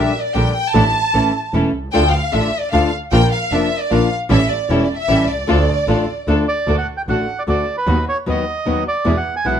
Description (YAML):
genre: tango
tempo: 151 BPM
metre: 3/4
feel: rubato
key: D minor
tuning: A4 = 440 Hz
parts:
  - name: dark studio violin section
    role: second line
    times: 0.0-6.5 s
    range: C#5 to A5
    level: -19 LUFS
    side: equal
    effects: none
  - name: nylon-string guitar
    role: accompaniment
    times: 0.0-9.6 s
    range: B2 to B4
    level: -19 LUFS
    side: left 2 dB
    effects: none
  - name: dark studio string section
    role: stabs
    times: 0.0-9.6 s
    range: B3 to Bb4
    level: -25 LUFS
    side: left 1 dB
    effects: none
  - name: clear double bass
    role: bass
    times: 0.0-9.6 s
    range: E1 to E2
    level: -19 LUFS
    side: right 1 dB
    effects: none
  - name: bandoneon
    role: melody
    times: 6.5-9.6 s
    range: B4 to G#5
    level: -20 LUFS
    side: right 3 dB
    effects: plate reverb
room: moderate studio reverb, RT60 0.5 s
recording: none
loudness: -15 LUFS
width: side -8 dB against mid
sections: 0.0-6.7 A section; 6.7-9.6 B section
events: violin section solo 0.0-6.7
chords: 0.0 Gm/Bb; 0.7 Asus4; 1.1 A; 1.9 Dm; 3.1 Bb; 4.3 A7; 5.5 Dm; 6.7 D; 7.9 B/D#; 9.1 E